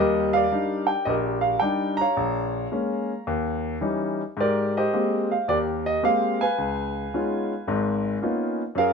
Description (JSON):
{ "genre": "solo jazz", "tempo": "109 BPM", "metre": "4/4", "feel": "swing 67% on 8ths", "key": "Eb major", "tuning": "A4 = 440 Hz", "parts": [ { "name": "warm concert grand piano", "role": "solo", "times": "0.0-8.9 s", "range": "Ab1 to Bb5", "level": "-22 LUFS", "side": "equal", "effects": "none" } ], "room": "moderate studio reverb, RT60 0.7 s", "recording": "none", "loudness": "-22 LUFS", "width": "side -5 dB against mid", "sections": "0.0-8.9 A section", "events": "none", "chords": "0.0 Ebmaj7; 2.2 Bbm7; 3.3 Eb7b9; 4.4 Abmaj9; 6.6 Db13" }